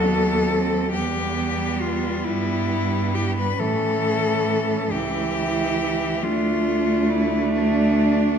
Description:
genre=classical, lyrical piece for cello ensemble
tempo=46 BPM (dotted quarters)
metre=12/8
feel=rubato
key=unclear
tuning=A4 = 440 Hz
part: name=rich cello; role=melody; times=0.0-8.4 s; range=D4 to B4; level=-24 LUFS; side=left 4 dB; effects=none
part: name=warm cello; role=second line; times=0.0-8.4 s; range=B3 to E4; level=-26 LUFS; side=right 10 dB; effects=none
part: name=warm cello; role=accompaniment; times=0.0-8.4 s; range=E3 to A3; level=-25 LUFS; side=left 1 dB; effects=none
part: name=rich cello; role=bass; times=0.0-8.4 s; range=C#2 to A2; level=-27 LUFS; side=right 2 dB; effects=none
room=wet recital hall reverb, RT60 1.6 s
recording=none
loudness=-19 LUFS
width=side -7 dB against mid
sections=0.0-8.4 A section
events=none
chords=0.0 B7; 0.9 Em; 3.6 A7; 6.2 Dm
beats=0.93 2.25 | 3.58 4.92 6.22 7.53

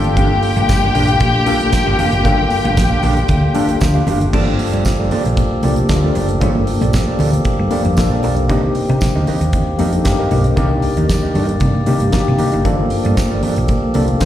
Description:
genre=disco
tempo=115 BPM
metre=4/4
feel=straight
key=G minor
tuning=A4 = 440 Hz
part: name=rich studio string section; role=second line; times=0.0-3.8 s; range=G4 to G5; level=-18 LUFS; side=left 4 dB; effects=analog delay, slapback echo
part: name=mellow electric guitar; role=accompaniment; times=0.0-14.2 s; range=Bb3 to F5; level=-23 LUFS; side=right 6 dB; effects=spring reverb, slapback echo
part: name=tine electric piano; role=accompaniment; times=0.0-14.3 s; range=A3 to C5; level=-21 LUFS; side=left 5 dB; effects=overdrive, fast stereo tremolo, slapback echo
part: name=percussive tonewheel organ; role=sustained chords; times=0.0-14.3 s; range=D3 to D5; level=-23 LUFS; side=right 1 dB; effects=overdrive, stopped rotary speaker
part: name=hollow-body short-scale fingered electric bass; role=bass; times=0.0-14.3 s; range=F1 to C3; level=-17 LUFS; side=equal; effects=none
part: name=damped 70s drum kit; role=drums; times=0.0-14.3 s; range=crash cymbal, hi-hat, kick drum, snare drum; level=-20 LUFS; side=right 1 dB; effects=none
part: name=congas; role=percussion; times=0.2-14.1 s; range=none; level=-26 LUFS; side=left 3 dB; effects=none
part: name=tambourine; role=percussion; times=0.7-14.3 s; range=none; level=-34 LUFS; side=right 4 dB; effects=slapback echo
room=little or no reverb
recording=live gig heard through the venue's PA, recital hall reverb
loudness=-13 LUFS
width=side -12 dB against mid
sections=0.0-4.3 A section; 4.3-14.3 B section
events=none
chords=0.0 Gm7; 4.3 Gm9; 8.5 Cm7; 12.7 Gm9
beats=| 0.17 0.69 1.21 1.73 | 2.25 2.77 3.29 3.81 | 4.33 4.85 5.37 5.89 | 6.41 6.93 7.46 7.97 | 8.50 9.02 9.54 10.06 | 10.58 11.10 11.62 12.13 | 12.65 13.17 13.69 14.21

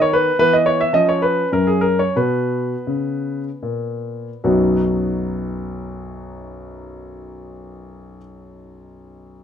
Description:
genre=classical, baroque-style suite movement for grand piano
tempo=72-116 BPM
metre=3/4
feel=rubato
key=B major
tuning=A4 = 442 Hz
part: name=warm concert grand piano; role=solo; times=0.0-9.4 s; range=B1 to E5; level=-18 LUFS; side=equal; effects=none
room=light reverb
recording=none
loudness=-16 LUFS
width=side -8 dB against mid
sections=0.0-4.4 A section; 4.4-9.2 B section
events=slowing down 0.0-4.4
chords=0.4 E5; 0.9 C#7/E#; 1.5 F#5; 2.2 Bsus2; 4.4 B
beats=| 0.40 0.94 1.52 | 2.17 2.88 3.63 | 4.44 5.24 6.04 | 6.84 7.63 8.42

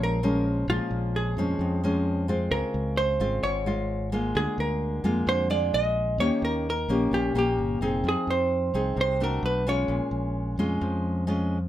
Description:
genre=bossa nova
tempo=130 BPM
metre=4/4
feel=straight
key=Bb minor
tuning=A4 = 444 Hz
part: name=vintage hollow-body jazz guitar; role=melody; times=0.0-10.6 s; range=F4 to Eb5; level=-28 LUFS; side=right 1 dB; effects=none
part: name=nylon-string guitar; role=accompaniment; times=0.0-11.7 s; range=F2 to Ab4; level=-27 LUFS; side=left 1 dB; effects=none
part: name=fingered electric bass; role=bass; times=0.0-11.7 s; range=F1 to F2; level=-29 LUFS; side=equal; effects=none
room=moderate studio ambience, RT60 0.5 s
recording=none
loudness=-24 LUFS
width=side -12 dB against mid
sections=0.7-11.7 A section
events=none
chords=0.0 Bbm7; 2.5 Dbmaj7; 4.4 Bb7/D; 5.7 Bb5; 6.2 Eb7; 8.0 Fm7; 9.4 Bm7; 9.9 Bbm7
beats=0.22 | 0.68 1.14 1.60 2.06 | 2.52 2.98 3.44 3.90 | 4.36 4.82 5.28 5.74 | 6.20 6.66 7.12 7.58 | 8.04 8.51 8.97 9.43 | 9.89 10.35 10.81 11.27

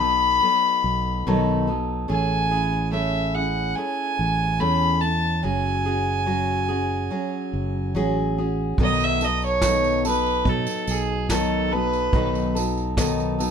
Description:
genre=acoustic folk duo or small band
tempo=72 BPM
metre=4/4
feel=straight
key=B mixolydian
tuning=A4 = 440 Hz
part: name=warm fiddle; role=melody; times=0.0-12.6 s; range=G#4 to B5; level=-23 LUFS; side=equal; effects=none
part: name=picked steel-string acoustic guitar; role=accompaniment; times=0.0-13.5 s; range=B2 to A4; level=-25 LUFS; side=left 1 dB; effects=none
part: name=fingered electric bass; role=bass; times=0.0-13.5 s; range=F#1 to B2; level=-26 LUFS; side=right 2 dB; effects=none
part: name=vintage brush drum kit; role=drums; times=8.8-13.2 s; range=kick drum, snare drum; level=-24 LUFS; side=right 1 dB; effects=none
part: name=tambourine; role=percussion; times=9.0-13.5 s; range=none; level=-35 LUFS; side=right 7 dB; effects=none
room=light reverb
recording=minimal, uncompressed stereo recording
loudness=-20 LUFS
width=side -7 dB against mid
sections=0.0-8.8 A section; 8.8-13.5 B section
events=fiddle solo 8.8-13.5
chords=0.0 B7; 2.1 Amaj7; 5.4 F#sus2; 8.8 B7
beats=0.43 1.27 | 2.10 2.94 3.77 4.61 | 5.45 6.28 7.12 7.96 | 8.80 9.63 10.47 11.31 | 12.15 12.98

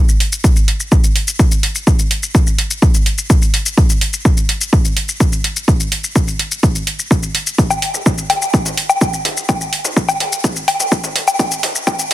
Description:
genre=melodic techno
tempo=126 BPM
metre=4/4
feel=straight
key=none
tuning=none
part: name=techno drum kit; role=drums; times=0.1-12.1 s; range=hi-hat, shaker, toms, woodblock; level=-17 LUFS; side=left 1 dB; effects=sidechain pumping on perc, high-pass filter on perc, sidechain pumping on toms, high-pass filter on toms, sidechain pumping on hats, high-pass filter on hats, high-pass filter on room
part: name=electronic kick drum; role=drums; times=0.4-12.0 s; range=none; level=-13 LUFS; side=equal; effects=none
room=light reverb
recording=high-pass filter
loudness=-13 LUFS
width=side -14 dB against mid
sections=0.0-12.1 A section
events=build-up 0.0-12.1; filter sweep 0.0-12.1; drum fill 7.6-12.1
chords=none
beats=0.44 0.92 1.39 | 1.87 2.35 2.82 3.30 | 3.77 4.25 4.73 5.20 | 5.68 6.16 6.63 7.11 | 7.58 8.06 8.54 9.01 | 9.49 9.96 10.44 10.92 | 11.39 11.87

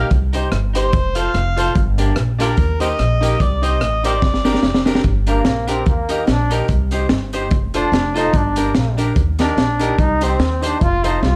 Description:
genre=ska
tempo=146 BPM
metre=4/4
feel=swing 56% on 8ths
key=G minor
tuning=A4 = 439 Hz
part: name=overdriven harmonica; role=melody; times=0.0-4.8 s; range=F4 to F5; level=-23 LUFS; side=equal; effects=slapback echo
part: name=clean electric guitar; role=accompaniment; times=0.0-11.2 s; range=Bb3 to C5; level=-29 LUFS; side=equal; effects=none
part: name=clear upright piano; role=stabs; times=0.0-11.2 s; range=D4 to C5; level=-27 LUFS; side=equal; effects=slapback echo
part: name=upright bass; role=bass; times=0.0-11.4 s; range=F1 to Eb2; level=-22 LUFS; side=equal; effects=none
part: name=crunchy breakbeat drum kit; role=drums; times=0.1-11.3 s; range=hi-hat, kick drum, rim click, snare drum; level=-21 LUFS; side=equal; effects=none
part: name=tambourine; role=percussion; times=0.3-11.1 s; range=none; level=-42 LUFS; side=equal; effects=none
part: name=bright trombone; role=melody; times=5.3-11.4 s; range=Bb3 to F4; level=-23 LUFS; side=equal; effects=slapback echo
room=light reverb, studio reverb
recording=dark, warm production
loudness=-17 LUFS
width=mono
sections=0.0-5.0 A section; 5.0-11.4 B section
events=drum fill 4.2-5.0; trombone solo 5.0-11.4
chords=0.1 Cm; 0.9 F; 1.8 Gm; 2.6 Eb; 3.4 Cm; 4.2 Gm; 5.9 Eb; 6.7 Cm; 7.5 F; 8.3 Gm; 9.2 Eb; 10.0 Cm; 10.8 F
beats=| 0.11 0.53 0.94 1.35 | 1.76 2.17 2.58 2.99 | 3.40 3.81 4.22 4.63 | 5.05 5.46 5.87 6.28 | 6.69 7.10 7.51 7.93 | 8.34 8.75 9.16 9.57 | 9.99 10.40 10.81 11.22

